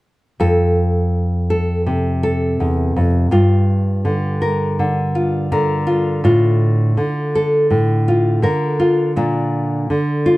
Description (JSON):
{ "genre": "folk", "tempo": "82 BPM", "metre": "4/4", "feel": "straight", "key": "unclear", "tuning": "A4 = 440 Hz", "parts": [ { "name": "nylon-string guitar", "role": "accompaniment", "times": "0.4-10.4 s", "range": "E2 to Bb4", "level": "-14 LUFS", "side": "equal", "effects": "none" } ], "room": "light reverb", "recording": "dark, warm production", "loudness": "-14 LUFS", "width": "side -19 dB against mid", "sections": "0.4-10.4 A section", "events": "none", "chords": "0.4 F; 3.3 Gm7; 6.2 Dm/A; 9.2 Bb" }